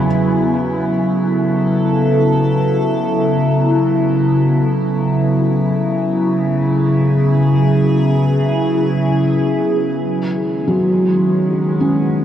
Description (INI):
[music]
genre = ambient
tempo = free time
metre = none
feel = none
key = F# dorian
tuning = A4 = 440 Hz
[part]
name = evolving wavetable pad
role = sustained chords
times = 0.0-12.2 s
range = C#3 to B4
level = -14 LUFS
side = equal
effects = chorus, built-in reverb, phaser
[part]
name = felt-muted upright piano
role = arpeggios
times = 0.0-2.3, 10.7-12.2 s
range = F#3 to G#5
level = -20 LUFS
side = equal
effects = tape echo
[sound]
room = wet huge ambient reverb, RT60 8.0 s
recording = dark, warm production, faint mains hum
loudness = -13 LUFS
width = side -10 dB against mid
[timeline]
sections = 0.1-10.0 A section; 10.0-12.2 B section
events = none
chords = 0.1 F#madd9; 5.0 Eadd9; 10.0 B